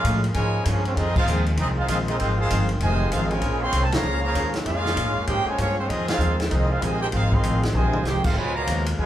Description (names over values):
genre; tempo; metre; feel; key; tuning
jazz, big band swing; 195 BPM; 4/4; swing 62% on 8ths; F minor; A4 = 440 Hz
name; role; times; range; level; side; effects
bright trumpet section; melody; 0.0-9.1 s; Ab3 to C6; -28 LUFS; equal; none
muted trombone section; second line; 0.0-9.1 s; Cb3 to G4; -28 LUFS; right 2 dB; none
fingerpicked steel-string acoustic guitar; accompaniment; 0.0-9.1 s; F2 to F4; -32 LUFS; left 2 dB; none
clear trombone section; sustained chords; 0.0-9.1 s; Cb3 to Bb4; -34 LUFS; left 1 dB; none
upright bass; bass; 0.0-9.1 s; F1 to Bb2; -24 LUFS; equal; none
vintage drum kit; drums; 0.0-9.1 s; crash cymbal, hi-hat, kick drum, ride cymbal, snare drum, toms; -28 LUFS; equal; none
room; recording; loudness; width
moderate large studio reverb, RT60 1.1 s; band playing live in one room; -20 LUFS; side -12 dB against mid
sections
0.0-9.1 A section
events
band accent 1.1, 3.9, 6.0; drum fill 7.7-8.1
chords
0.0 Bbm7; 1.0 Fm7; 3.4 Bbm7; 5.9 Fm7; 8.4 Db7